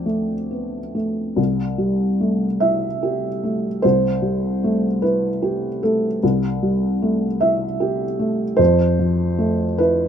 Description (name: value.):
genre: neoclassical minimalist piano.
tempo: 50 BPM (dotted quarters).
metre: 6/8.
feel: rubato.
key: C major.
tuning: A4 = 440 Hz.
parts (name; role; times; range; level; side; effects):
felt-muted upright piano; solo; 0.0-10.1 s; C2 to E5; -18 LUFS; equal; none.
room: moderate small room reverb, RT60 0.5 s.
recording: minimal, uncompressed stereo recording.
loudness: -18 LUFS.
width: side -8 dB against mid.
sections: 0.0-1.4 A section; 1.4-10.1 B section.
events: none.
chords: 0.0 Dm7; 1.4 C6; 8.6 Fmaj7.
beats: 0.07 | 1.38 2.62 | 3.84 5.04 | 6.23 7.41 | 8.59 9.80.